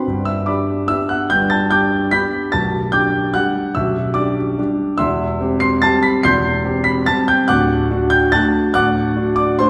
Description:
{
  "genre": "classical, piano waltz",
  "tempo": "145 BPM",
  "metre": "3/4",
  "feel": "uneven beats, rubato",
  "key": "G major",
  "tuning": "A4 = 440 Hz",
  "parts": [
    { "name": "warm concert grand piano", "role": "solo", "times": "0.0-9.7 s", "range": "B0 to C7", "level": "-17 LUFS", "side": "equal", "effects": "none" }
  ],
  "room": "wet recital hall reverb, RT60 1.7 s",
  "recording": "recorded in a church or concert hall",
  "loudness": "-17 LUFS",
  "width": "mono",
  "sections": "0.0-9.7 A section",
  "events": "none",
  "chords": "0.1 G; 2.5 G/B; 5.0 C/E; 7.5 D"
}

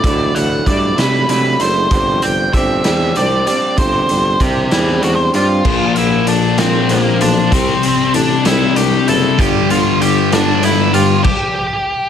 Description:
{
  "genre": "quiet-loud alternative rock",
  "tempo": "64 BPM (dotted quarters)",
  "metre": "6/8",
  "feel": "straight",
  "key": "unclear",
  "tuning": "A4 = 439 Hz",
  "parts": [
    { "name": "octave-fuzz lead guitar", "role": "melody", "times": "0.0-12.1 s", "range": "Bb3 to A5", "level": "-17 LUFS", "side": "equal", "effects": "distortion" },
    { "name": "electric guitar through a small old amp", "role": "arpeggios", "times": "0.0-11.3 s", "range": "G2 to G4", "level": "-20 LUFS", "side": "right 3 dB", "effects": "harmonic tremolo" },
    { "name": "warm tuba", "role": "bass", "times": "0.0-11.1 s", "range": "F#1 to C3", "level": "-19 LUFS", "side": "equal", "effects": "none" },
    { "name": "raw garage drum kit", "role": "drums", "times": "0.0-11.4 s", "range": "crash cymbal, hi-hat, kick drum, snare drum", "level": "-19 LUFS", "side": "equal", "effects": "none" },
    { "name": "thick fuzz guitar", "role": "riff", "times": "5.7-11.2 s", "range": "G2 to C4", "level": "-15 LUFS", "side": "left 12 dB", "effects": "distortion" },
    { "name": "thick fuzz guitar", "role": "riff", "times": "9.4-11.2 s", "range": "G2 to G3", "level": "-18 LUFS", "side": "right 15 dB", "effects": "distortion" }
  ],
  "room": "light reverb",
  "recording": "none",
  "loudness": "-11 LUFS",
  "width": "side -8 dB against mid",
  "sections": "0.0-5.7 A section; 5.7-12.1 B section",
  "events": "stop 11.3-12.1",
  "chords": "0.0 Dadd9; 1.9 Gsus4; 5.7 Bbadd9; 7.5 Cadd9; 9.4 G; 11.3 N.C."
}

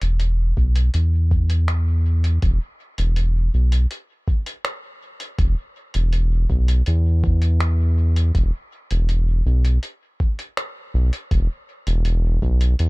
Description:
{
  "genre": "ambient dub",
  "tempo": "81 BPM",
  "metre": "4/4",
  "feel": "straight",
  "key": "unclear",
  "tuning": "A4 = 440 Hz",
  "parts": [
    { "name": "round analog bass", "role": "bass", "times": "0.0-12.9 s", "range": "E1 to E2", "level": "-17 LUFS", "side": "equal", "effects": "none" },
    { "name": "lo-fi sampler-style drum kit", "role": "drums", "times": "0.0-12.9 s", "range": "finger snaps, hi-hat", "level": "-31 LUFS", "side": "equal", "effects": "overdrive" },
    { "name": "electronic kick drum", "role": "drums", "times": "0.6-12.6 s", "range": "none", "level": "-20 LUFS", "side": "equal", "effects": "overdrive" }
  ],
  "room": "little or no reverb",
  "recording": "dark, warm production",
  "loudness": "-18 LUFS",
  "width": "side -25 dB against mid",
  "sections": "0.0-12.9 A section",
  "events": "none",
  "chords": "none"
}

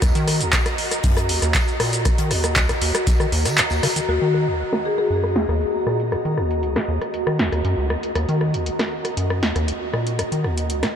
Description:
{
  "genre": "acid house",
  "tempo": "118 BPM",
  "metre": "4/4",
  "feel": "straight",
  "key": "Eb minor",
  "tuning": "A4 = 440 Hz",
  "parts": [
    { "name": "acid bass, square", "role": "riff", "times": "0.0-10.9 s", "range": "Db2 to Eb3", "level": "-23 LUFS", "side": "equal", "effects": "tube saturation, analog delay" },
    { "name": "big rock drum kit", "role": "drums", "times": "0.0-4.0 s", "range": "hi-hat, snare drum, tambourine", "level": "-34 LUFS", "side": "left 1 dB", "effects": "none" },
    { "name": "electro analog drum machine", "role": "drums", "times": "0.0-10.9 s", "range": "handclaps, hi-hat, rim click, shaker, snare drum", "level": "-23 LUFS", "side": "equal", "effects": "low-pass filter on snare, low-pass filter on hats, low-pass filter on perc" },
    { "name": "electronic kick drum", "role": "drums", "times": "0.0-3.2 s", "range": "none", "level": "-20 LUFS", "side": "equal", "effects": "none" },
    { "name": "ethereal airy pad", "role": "texture", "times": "0.0-11.0 s", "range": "Gb4 to Bb5", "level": "-26 LUFS", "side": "equal", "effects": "ensemble chorus, built-in reverb, sidechain pumping" },
    { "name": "marimba with medium hard mallets", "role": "melody", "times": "4.1-5.1 s", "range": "Gb4 to Ab4", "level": "-26 LUFS", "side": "left 4 dB", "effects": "ping-pong delay" }
  ],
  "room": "moderate huge ambient reverb, RT60 8.5 s",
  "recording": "dreamy mix soaked in reverb",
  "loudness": "-18 LUFS",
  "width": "side -8 dB against mid",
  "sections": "0.0-4.1 A section; 4.1-11.0 B section",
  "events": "kick drops out 3.6-4.1; filter sweep on drum 4.1-11.0",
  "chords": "0.0 Ebm"
}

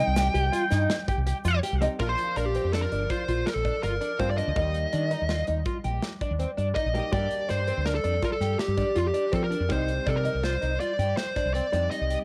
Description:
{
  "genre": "progressive instrumental, band music in an uneven meter",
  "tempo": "164 BPM",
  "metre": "7/4",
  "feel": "straight",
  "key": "unclear",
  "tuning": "A4 = 440 Hz",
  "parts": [
    { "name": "fuzz lead guitar", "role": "melody", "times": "0.0-12.2 s", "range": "F4 to G5", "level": "-31 LUFS", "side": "equal", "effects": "distortion, plate reverb, tape echo" },
    { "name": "vintage hollow-body jazz guitar", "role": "accompaniment", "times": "0.0-12.2 s", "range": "F3 to G4", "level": "-40 LUFS", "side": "equal", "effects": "cassette tape" },
    { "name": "fingerpicked twelve-string acoustic guitar", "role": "arpeggios", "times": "0.0-12.2 s", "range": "C4 to G4", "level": "-33 LUFS", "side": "equal", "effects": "cassette tape" },
    { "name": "mellow fretless electric bass", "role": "bass", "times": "0.1-12.2 s", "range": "G1 to F3", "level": "-30 LUFS", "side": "equal", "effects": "none" },
    { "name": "modern studio drum kit", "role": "drums", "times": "0.2-12.2 s", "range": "hi-hat, kick drum, snare drum", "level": "-36 LUFS", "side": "equal", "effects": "cassette tape" },
    { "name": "tube shaker", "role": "percussion", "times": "0.2-1.6 s", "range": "none", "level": "-51 LUFS", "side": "equal", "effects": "none" }
  ],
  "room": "moderate booth ambience, RT60 0.3 s",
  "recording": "home recording on cassette",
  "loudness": "-27 LUFS",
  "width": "mono",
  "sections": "0.0-2.0 A section; 2.0-12.2 B section",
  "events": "none",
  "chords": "0.0 Cm; 2.0 Bb; 4.6 Eb; 7.1 Gm; 9.7 Cm"
}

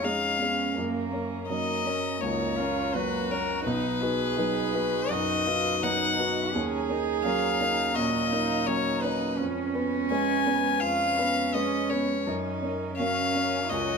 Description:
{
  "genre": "neoclassical piano and strings",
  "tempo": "83 BPM",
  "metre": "4/4",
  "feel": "rubato",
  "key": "unclear",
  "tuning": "A4 = 440 Hz",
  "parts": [
    { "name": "rich violin", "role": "melody", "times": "0.0-14.0 s", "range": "Bb4 to Ab5", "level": "-28 LUFS", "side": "left 4 dB", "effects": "none" },
    { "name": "clear cello", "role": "second line", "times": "0.0-14.0 s", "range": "Bb3 to Ab4", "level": "-32 LUFS", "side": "right 9 dB", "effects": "none" },
    { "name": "dark viola", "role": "accompaniment", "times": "0.0-14.0 s", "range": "Bb3 to F#4", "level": "-35 LUFS", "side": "right 3 dB", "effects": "none" },
    { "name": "felt-muted upright piano", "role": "accompaniment", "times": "0.0-14.0 s", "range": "B1 to Db5", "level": "-30 LUFS", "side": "equal", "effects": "none" },
    { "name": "dark studio string section", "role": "sustained chords", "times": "0.0-14.0 s", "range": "Gb3 to Bb5", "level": "-40 LUFS", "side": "left 2 dB", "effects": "none" }
  ],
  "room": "moderate studio reverb, RT60 0.8 s",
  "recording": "band playing live in one room",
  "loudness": "-24 LUFS",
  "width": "side -5 dB against mid",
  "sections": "0.0-14.0 A section",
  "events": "none",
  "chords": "0.0 Db7/F; 0.8 Gb; 3.7 B; 6.5 Ebm7; 9.4 Db7/F; 12.3 Gb"
}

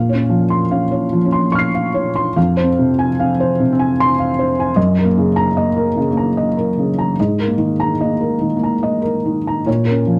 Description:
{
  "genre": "neoclassical minimalist piano",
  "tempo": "73 BPM",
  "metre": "3/4",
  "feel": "rubato",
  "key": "Bb minor",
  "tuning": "A4 = 440 Hz",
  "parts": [
    { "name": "felt-muted upright piano", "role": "solo", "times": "0.0-10.2 s", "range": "F2 to C7", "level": "-16 LUFS", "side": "equal", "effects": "none" }
  ],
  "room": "light reverb",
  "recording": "dark, warm production",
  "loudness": "-16 LUFS",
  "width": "mono",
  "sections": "0.0-10.2 A section",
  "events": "none",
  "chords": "0.0 Bbmadd9; 2.4 Fm; 4.8 Gb6; 7.2 Absus2; 9.7 Bbm"
}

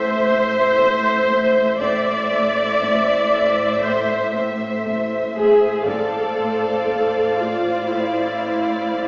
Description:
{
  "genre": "cinematic, suspense film score",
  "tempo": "59 BPM",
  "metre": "4/4",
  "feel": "straight",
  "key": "A minor",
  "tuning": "A4 = 438 Hz",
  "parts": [
    { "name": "rich chamber violin section", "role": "melody", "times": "0.0-9.1 s", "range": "E5 to F5", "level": "-25 LUFS", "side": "equal", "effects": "none" },
    { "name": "rich symphonic violin section", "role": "second line", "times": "0.0-9.1 s", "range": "C5 to D5", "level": "-24 LUFS", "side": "equal", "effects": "none" },
    { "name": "rich symphonic viola section", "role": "accompaniment", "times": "0.0-9.1 s", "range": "E4 to D5", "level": "-18 LUFS", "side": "equal", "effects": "none" },
    { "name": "Celtic harp", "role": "riff", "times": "0.0-9.1 s", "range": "A2 to A3", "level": "-29 LUFS", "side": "equal", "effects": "none" },
    { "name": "rich symphonic cello section", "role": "bass", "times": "0.0-9.1 s", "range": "A2", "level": "-29 LUFS", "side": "equal", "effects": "none" },
    { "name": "rich symphonic double bass section", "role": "bass", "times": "0.0-9.1 s", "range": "A1", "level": "-38 LUFS", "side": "equal", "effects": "none" },
    { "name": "taiko ensemble", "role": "drums", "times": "0.8-9.1 s", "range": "none", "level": "-39 LUFS", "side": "equal", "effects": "none" }
  ],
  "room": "wet scoring stage reverb, RT60 1.5 s",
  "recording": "heard from further back in the room, small speaker sound",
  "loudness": "-16 LUFS",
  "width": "side -28 dB against mid",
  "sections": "0.0-9.1 A section",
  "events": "none",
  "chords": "0.0 Am; 5.9 F6/A"
}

